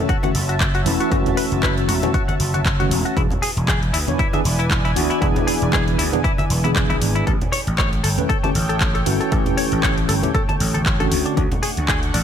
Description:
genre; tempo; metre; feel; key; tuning
nu-disco, nu disco; 117 BPM; 4/4; swing 56% on 16ths; unclear; A4 = 439 Hz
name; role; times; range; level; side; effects
bright tine electric piano; accompaniment; 0.0-11.5 s; D3 to C#5; -24 LUFS; equal; medium stereo tremolo, sidechain pumping, dub echo
lush unison pad; sustained chords; 0.0-12.2 s; A3 to C#6; -28 LUFS; right 1 dB; chorus, sidechain pumping
direct-recorded clean electric guitar; riff; 0.1-12.2 s; D4 to A5; -26 LUFS; left 3 dB; wide subtle chorus, dub echo
electronic kick drum; drums; 0.1-12.0 s; none; -22 LUFS; equal; none
house drum kit; drums; 0.1-12.2 s; handclaps, hi-hat; -25 LUFS; equal; none
congas; percussion; 0.2-11.6 s; none; -27 LUFS; right 1 dB; none
vintage slap bass; bass; 0.3-12.2 s; E1 to D2; -22 LUFS; equal; none
room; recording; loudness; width
little or no reverb; none; -17 LUFS; side -8 dB against mid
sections
0.0-12.2 A section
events
none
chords
0.0 F#m7; 3.2 E7; 7.3 A7; 11.1 Dmaj7

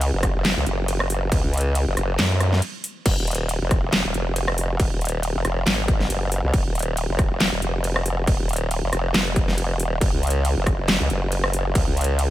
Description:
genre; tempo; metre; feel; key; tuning
heavy wobble dubstep; 138 BPM; 4/4; swing 55% on 16ths, half-time; F phrygian; A4 = 440 Hz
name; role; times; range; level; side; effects
formant-sweep wobble bass; bass; 0.0-12.3 s; Eb1 to Gb2; -22 LUFS; equal; chorus, overdrive
dubstep drum kit; drums; 0.0-12.3 s; crash cymbal, handclaps, hi-hat, rim click, snare drum; -25 LUFS; equal; none
electronic kick drum; drums; 0.2-11.8 s; none; -21 LUFS; equal; distortion
room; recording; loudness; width
little or no reverb; none; -20 LUFS; side -14 dB against mid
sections
0.0-3.1 A section; 3.1-12.3 A section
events
drop 0.0-3.1, 3.1-12.3; break 2.6-3.1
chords
none

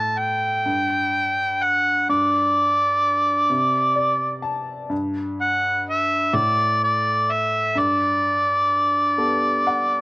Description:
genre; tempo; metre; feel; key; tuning
acoustic folk-pop ballad; 42 BPM (dotted quarters); 6/8; straight; unclear; A4 = 437 Hz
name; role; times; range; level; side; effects
overdriven harmonica; melody; 0.0-10.0 s; D5 to A5; -18 LUFS; equal; none
warm grand piano; accompaniment; 0.0-10.0 s; G2 to A5; -27 LUFS; left 1 dB; none
room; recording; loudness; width
little or no reverb; recorded outdoors, with no room sound; -18 LUFS; side -22 dB against mid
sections
0.0-10.0 A section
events
none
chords
0.0 N.C.; 7.8 Gadd9

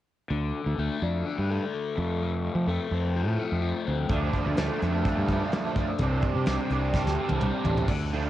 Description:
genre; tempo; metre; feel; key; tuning
indie rock; 127 BPM; 4/4; straight; D minor; A4 = 440 Hz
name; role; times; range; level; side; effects
overdriven electric guitar; riff; 0.3-8.3 s; F2 to D4; -31 LUFS; left 6 dB; phaser, cassette tape
fuzz fingered electric bass; bass; 0.3-8.3 s; A1 to F3; -28 LUFS; equal; overdrive
fuzz guitar; riff; 4.1-8.3 s; F3 to D4; -29 LUFS; right 6 dB; distortion, ensemble chorus, cassette tape
soft brush drum kit; drums; 4.1-8.0 s; crash cymbal, hi-hat, kick drum, snare drum, toms; -30 LUFS; equal; none
room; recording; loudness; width
light reverb, small room ambience; home recording on cassette; -25 LUFS; side -13 dB against mid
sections
0.3-7.9 A section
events
drum fill 6.9-7.9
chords
0.3 Dm; 2.0 F; 4.1 Dm; 6.0 Csus2

